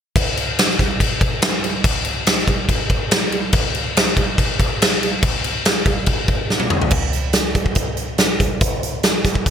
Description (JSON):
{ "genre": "rock", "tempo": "142 BPM", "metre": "4/4", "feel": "straight", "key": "none", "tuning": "none", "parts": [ { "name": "big rock drum kit", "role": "drums", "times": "0.2-9.5 s", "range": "crash cymbal, hi-hat, kick drum, snare drum, toms", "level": "-16 LUFS", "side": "equal", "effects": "gated reverb" } ], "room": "light reverb", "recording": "bright 1980s-style digital production", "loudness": "-16 LUFS", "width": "side -8 dB against mid", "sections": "0.2-6.9 A section; 6.9-9.5 B section", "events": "drum fill 6.5-6.9", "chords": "none", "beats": "| 0.15 0.57 1.00 1.42 | 1.84 2.27 2.69 3.11 | 3.54 3.96 4.38 4.80 | 5.23 5.65 6.07 6.50 | 6.92 7.34 7.77 8.19 | 8.62 9.04 9.47" }